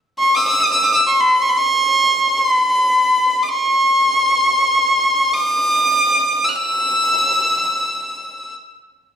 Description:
Arabic maqam ensemble; free time; A4 = 440 Hz
rich violin; solo; 0.2-8.5 s; B5+39c to F#6-46c; -14 LUFS; equal
wet recital hall reverb, RT60 1.4 s; heard from further back in the room; -13 LUFS; side -8 dB against mid
0.0-9.2 A section
free time

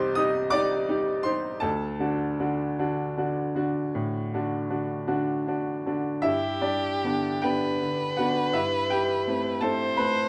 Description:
classical, romantic duo for violin and grand piano; 50-58 BPM (dotted quarters); 12/8; rubato; G major; A4 = 441 Hz
bright baby grand piano; accompaniment; 0.0-10.3 s; C2 to Eb6; -28 LUFS; equal
rich violin; melody; 6.3-10.3 s; G4 to C5; -30 LUFS; equal
light reverb; dark, warm production; -27 LUFS; mono
0.0-6.2 A section; 6.2-10.3 B section
0.0 Cm; 1.6 D; 6.2 G; 8.6 Am7/G
0.53 | 1.64 2.78 3.95 5.09 | 6.25 7.44 8.55 9.61

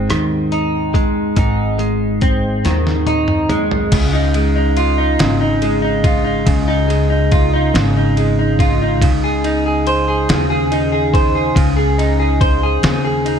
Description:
six-eight pop ballad; 47 BPM (dotted quarters); 6/8; straight; Db major; A4 = 441 Hz
direct-recorded clean electric guitar; accompaniment; 0.0-13.4 s; Ab2 to C5; -16 LUFS; equal; double-tracked left and right
upright bass; bass; 0.0-13.4 s; Ab1 to Eb2; -19 LUFS; equal
trip hop sampler-style drum kit; drums; 0.1-13.4 s; crash cymbal, hi-hat, kick drum, ride cymbal, rim click, snare drum, toms; -19 LUFS; equal
light reverb; dark, warm production; -13 LUFS; side -7 dB against mid
0.0-3.9 A section; 3.9-13.4 B section
drum fill 2.6-3.9
0.0 Ab; 3.9 Dbadd9; 9.0 Ab/Db
0.09 | 1.37 2.64 | 3.92 5.19 | 6.46 7.74 | 9.01 10.28 | 11.55 12.82

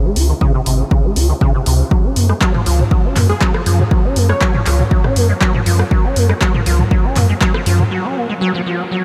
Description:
acid house; 120 BPM; 4/4; straight; A4 = 440 Hz
deep acid bass; riff; 0.0-9.0 s; C3 to F4; -21 LUFS; equal; tube saturation, ensemble chorus, cassette tape, analog delay
warm sub bass; bass; 0.2-7.8 s; Ab1 to Gb2; -16 LUFS; equal; sidechain pumping
punchy analog drum machine; drums; 0.2-7.9 s; handclaps, hi-hat, rim click, toms; -22 LUFS; equal; overdrive
electronic kick drum; drums; 0.4-7.5 s; -17 LUFS; equal; overdrive
plucky unison lead; melody; 3.3-5.0 s; Ab4 to Db5; -29 LUFS; equal; tape echo
moderate huge ambient reverb, RT60 7.5 s; dreamy mix soaked in reverb; -15 LUFS; mono
0.0-9.0 A section
break 7.9-9.0
0.0 Dbmaj7(no3); 1.9 Gbmaj7(no3)
0.41 0.91 1.41 | 1.91 2.41 2.91 3.41 | 3.91 4.41 4.91 5.41 | 5.91 6.41 6.91 7.41 | 7.91 8.41 8.91

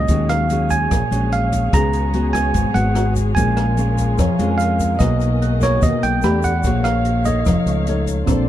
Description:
bossa nova; 146 BPM; 4/4; straight; A4 = 440 Hz
bell-like tine electric piano; melody; 0.0-8.0 s; C#5 to A#5; -22 LUFS; right 4 dB
nylon-string guitar; accompaniment; 0.0-8.5 s; G#2 to C#5; -21 LUFS; left 3 dB
muted studio string section; sustained chords; 0.0-8.5 s; F#3 to C6; -28 LUFS; left 2 dB
fingered electric bass; bass; 0.0-8.5 s; F1 to E#2; -20 LUFS; equal
open jazz drum kit; drums; 0.1-8.4 s; hi-hat, kick drum, rim click; -23 LUFS; equal
egg shaker; percussion; 0.1-8.5 s; -38 LUFS; left 7 dB
warm grand piano; accompaniment; 1.7-8.5 s; D3 to F#6; -27 LUFS; right 2 dB
little or no reverb; dark, warm production; -15 LUFS; side -12 dB against mid
0.0-8.3 A section
0.1 D#m11; 1.7 C#7sus4; 3.4 A#m7; 5.0 G#m9/B; 6.2 Em11; 6.6 D#m11/A#; 7.5 Faug7
| 0.09 0.50 0.91 1.32 | 1.73 2.14 2.55 2.96 | 3.37 3.78 4.19 4.60 | 5.00 5.42 5.82 6.23 | 6.64 7.05 7.46 7.87 | 8.28

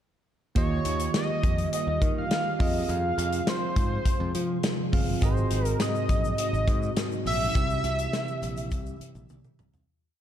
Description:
1980s-style pop; 103 BPM; 4/4; straight; A4 = 441 Hz
octave-doubled lead; melody; 0.6-9.3 s; C5 to F5; -30 LUFS; equal; chorus
bell-like tine electric piano; accompaniment; 0.6-9.9 s; Ab2 to F5; -32 LUFS; right 3 dB
glassy FM pad; sustained chords; 1.2-9.9 s; C3 to Ab4; -35 LUFS; left 1 dB; ensemble chorus, built-in reverb
modern bright picked electric bass; bass; 0.6-9.8 s; G1 to F3; -31 LUFS; equal
modern studio drum kit; drums; 0.6-9.9 s; hi-hat, kick drum, snare drum, toms; -28 LUFS; equal
tube shaker; percussion; 5.2-9.9 s; -50 LUFS; left 12 dB
moderate concert hall reverb, RT60 2.1 s; dark, warm production; -24 LUFS; side -10 dB against mid
0.6-9.9 pre-chorus
fade-out 7.5-9.9; drum fill 9.3-9.9
0.6 Ebadd9; 2.6 Fm; 5.2 Ab7; 7.5 C
| 0.56 1.14 1.73 2.31 | 2.89 3.47 4.05 4.64 | 5.22 5.80 6.38 6.97 | 7.55 8.13 8.71 9.30

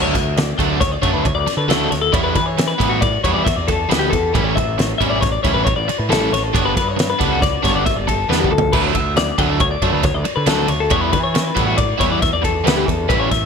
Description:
math rock and midwest emo; 137 BPM; 5/4; straight; D major; A4 = 437 Hz
twelve-string electric guitar; arpeggios; 0.0-13.5 s; F#4 to F#5; -20 LUFS; left 6 dB; analog delay
crunchy overdriven guitar; riff; 0.0-13.4 s; D3 to E4; -20 LUFS; right 2 dB
growling picked electric bass; bass; 0.0-13.5 s; G1 to E3; -22 LUFS; right 1 dB; overdrive
loose indie drum kit; drums; 0.1-13.4 s; crash cymbal, kick drum, ride cymbal, snare drum, toms; -20 LUFS; right 1 dB
little or no reverb; -15 LUFS; side -6 dB against mid
0.0-13.5 A section
drum fill 8.3-8.7
0.0 Dmaj7; 2.1 Em7; 4.3 A7; 6.5 G; 8.7 Dmaj7; 10.9 Em7
0.36 0.81 1.25 1.69 | 2.13 2.57 3.01 3.45 3.89 | 4.33 4.77 5.21 5.65 6.09 | 6.53 6.97 7.41 7.85 8.29 | 8.72 9.16 9.60 10.04 10.47 | 10.91 11.35 11.78 12.22 12.66 | 13.09

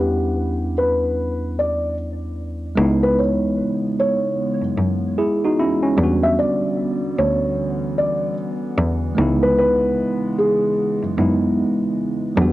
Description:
lo-fi hip hop; 75 BPM; 4/4; swing 61% on 16ths; C# minor; A4 = 439 Hz
felt-muted upright piano; melody; 0.0-11.0 s; G4 to E5; -21 LUFS; equal; low-pass filter
tine electric piano; accompaniment; 0.0-12.5 s; E2 to F#5; -21 LUFS; right 1 dB; medium stereo tremolo, low-pass filter
warbly tape-like pad; sustained chords; 2.8-12.5 s; C#3 to B3; -28 LUFS; left 1 dB; chorus, built-in reverb, low-pass filter
rich cello; bass; 2.8-12.5 s; C#2 to F#2; -21 LUFS; equal
light reverb, small room ambience; dry, gritty hardware recording, transformer saturation; -17 LUFS; side -16 dB against mid
0.0-2.8 A section; 2.8-12.5 B section
filter sweep 0.0-2.8
0.0 Em7; 2.8 C#m7; 6.0 Em7; 9.2 C#m7
0.37 1.17 1.97 | 2.77 3.57 4.37 5.17 | 5.97 6.77 7.57 8.37 | 9.17 9.97 10.77 11.57 | 12.37

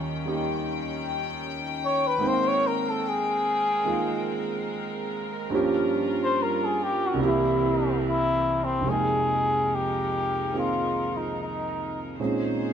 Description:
jazz ballad; 72 BPM; 4/4; swing 68% on 8ths; F minor; A4 = 440 Hz
warm concert grand piano; accompaniment; 0.0-12.7 s; C2 to G5; -27 LUFS; right 2 dB
rich symphonic string section; sustained chords; 0.0-12.7 s; Eb3 to G5; -33 LUFS; left 2 dB
trumpet with cup mute; melody; 1.8-12.1 s; C4 to Db5; -25 LUFS; left 2 dB
moderate stone room reverb, RT60 1.3 s; band playing live in one room; -23 LUFS; side -8 dB against mid
0.0-8.9 A section; 8.9-12.7 B section
muted trumpet solo 0.0-8.9
0.0 Eb7; 2.2 Abmaj9; 5.5 Gm7b5; 7.2 C7; 8.9 Fm11; 12.2 Bbm11
0.53 1.36 | 2.19 3.02 3.86 4.69 | 5.52 6.35 7.19 8.02 | 8.86 9.69 10.53 11.36 | 12.19

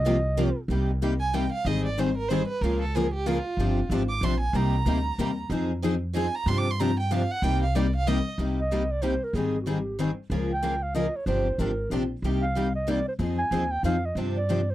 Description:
acoustic string swing (jazz manouche); 187 BPM; 3/4; swing 60% on 8ths; C minor; A4 = 440 Hz
breathy clarinet; melody; 0.0-0.6, 8.6-14.7 s; F#4 to Ab5; -29 LUFS; right 2 dB
picked steel-string acoustic guitar; accompaniment; 0.0-14.6 s; C3 to Ab4; -33 LUFS; right 7 dB
upright bass; bass; 0.0-14.7 s; G1 to G2; -28 LUFS; equal
picked steel-string acoustic guitar; accompaniment; 0.1-14.6 s; C3 to Bb4; -28 LUFS; left 5 dB
warm violin; second line; 1.2-8.3 s; F4 to D6; -30 LUFS; right 4 dB
little or no reverb; dry, close 1970s-style studio recording; -24 LUFS; side -14 dB against mid
0.7-8.4 A section; 8.4-14.7 B section
violin solo 0.7-8.4
0.0 C7sus4; 0.7 Cm7; 1.7 Abmaj7; 2.6 Db6; 3.6 G7sus4; 4.5 Cm7; 5.5 Fm7; 6.5 G7sus4; 7.4 Cm7; 9.3 Abmaj7; 10.3 Db6; 11.3 G7sus4; 12.2 Cm7; 13.2 Fm7; 14.2 G7sus4
0.05 0.37 | 0.69 1.01 1.33 | 1.66 1.98 2.30 | 2.62 2.94 3.26 | 3.58 3.90 4.22 | 4.54 4.86 5.18 | 5.50 5.83 6.14 | 6.46 6.78 7.10 | 7.42 7.74 8.06 | 8.38 8.70 9.02 | 9.34 9.66 9.98 | 10.30 10.62 10.95 | 11.27 11.59 11.91 | 12.23 12.55 12.87 | 13.20 13.52 13.84 | 14.16 14.48

